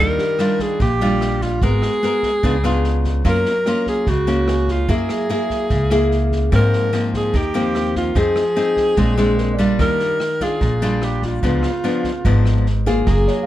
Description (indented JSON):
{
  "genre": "bossa nova",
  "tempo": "147 BPM",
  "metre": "4/4",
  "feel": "straight",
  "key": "Eb major",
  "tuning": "A4 = 441 Hz",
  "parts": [
    { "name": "breathy alto saxophone", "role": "melody", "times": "0.0-13.5 s", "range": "F4 to Bb4", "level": "-21 LUFS", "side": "right 1 dB", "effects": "none" },
    { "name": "nylon-string guitar", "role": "accompaniment", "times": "0.0-13.5 s", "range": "Ab2 to Bb4", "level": "-20 LUFS", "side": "left 2 dB", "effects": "none" },
    { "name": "upright bass", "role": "bass", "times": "0.0-13.3 s", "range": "F#1 to Ab2", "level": "-20 LUFS", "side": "right 1 dB", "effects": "none" },
    { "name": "dark baby grand piano", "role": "accompaniment", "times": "0.2-1.6, 4.5-5.1, 9.4-10.1, 12.9-13.5 s", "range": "G4 to E#5", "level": "-30 LUFS", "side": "right 3 dB", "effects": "none" },
    { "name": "open jazz drum kit", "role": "drums", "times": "0.2-13.3 s", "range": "kick drum, rim click, snare drum", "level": "-26 LUFS", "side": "equal", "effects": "none" }
  ],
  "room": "light reverb",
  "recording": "dark, warm production",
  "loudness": "-16 LUFS",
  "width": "side -13 dB against mid",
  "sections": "0.0-13.1 A section",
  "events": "none",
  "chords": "0.0 Ebmaj9; 1.6 Abm9; 2.4 Db7b9; 3.3 Gbmaj7; 4.9 Gb9; 6.5 Ab69; 8.2 Fm7; 9.0 Bb9; 9.8 Ebmaj9; 11.4 Db7b9"
}